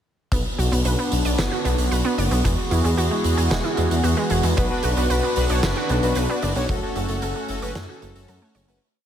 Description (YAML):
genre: synthwave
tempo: 113 BPM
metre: 4/4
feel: straight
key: B dorian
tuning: A4 = 439 Hz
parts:
  - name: chorused pulse-width pad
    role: sustained chords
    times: 0.3-8.8 s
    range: E3 to G#4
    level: -26 LUFS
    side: right 1 dB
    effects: none
  - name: wide unison pluck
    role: arpeggios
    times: 0.3-8.8 s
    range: G#3 to D5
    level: -28 LUFS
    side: right 3 dB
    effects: digital delay, slapback echo
  - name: dark detuned saw bass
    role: bass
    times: 0.3-8.8 s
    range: E1 to F#2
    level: -22 LUFS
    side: equal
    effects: tube saturation, sidechain pumping
  - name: kick drum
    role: drums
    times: 0.3-6.8 s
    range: none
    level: -28 LUFS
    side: equal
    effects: none
  - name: oversized low-tuned drum kit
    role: drums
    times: 0.3-8.8 s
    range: hi-hat, snare drum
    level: -28 LUFS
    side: right 1 dB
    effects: none
  - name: analog synth brass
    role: stabs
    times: 4.6-8.8 s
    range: C#4 to D5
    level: -26 LUFS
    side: left 2 dB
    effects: chorus, digital delay, slapback echo
room: moderate concert hall reverb, RT60 1.9 s, small room ambience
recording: big arena sound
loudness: -19 LUFS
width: side -10 dB against mid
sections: 0.3-8.8 verse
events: fade-out 6.0-8.8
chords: 0.3 Bm; 2.4 Eadd9; 4.6 Bm; 6.7 F#m